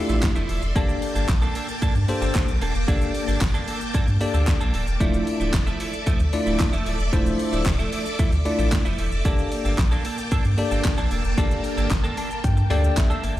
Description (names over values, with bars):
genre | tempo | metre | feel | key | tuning
dance-pop | 113 BPM | 4/4 | straight | unclear | A4 = 440 Hz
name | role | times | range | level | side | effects
bell-like tine electric piano | accompaniment | 0.0-13.4 s | A3 to A5 | -27 LUFS | left 2 dB | medium stereo tremolo, sidechain pumping
string machine, full ensemble | sustained chords | 0.0-13.4 s | Bb3 to D6 | -30 LUFS | equal | ensemble chorus, sidechain pumping
clean electric guitar | riff | 0.1-13.4 s | F3 to A4 | -31 LUFS | right 3 dB | analog chorus
saturated sub bass | bass | 0.1-13.4 s | D1 to G2 | -24 LUFS | equal | sidechain pumping
pop drum kit | drums | 0.1-13.4 s | handclaps, hi-hat, kick drum, shaker, snare drum | -24 LUFS | equal | none
room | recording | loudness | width
little or no reverb | played on a big sound system in a bare room, large studio reverb | -20 LUFS | side -14 dB against mid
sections
0.0-13.4 A section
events
tine electric piano fill 11.9-13.4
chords
0.0 Dmadd9; 0.8 Gmadd9; 5.0 Dmadd9; 9.3 Gmadd9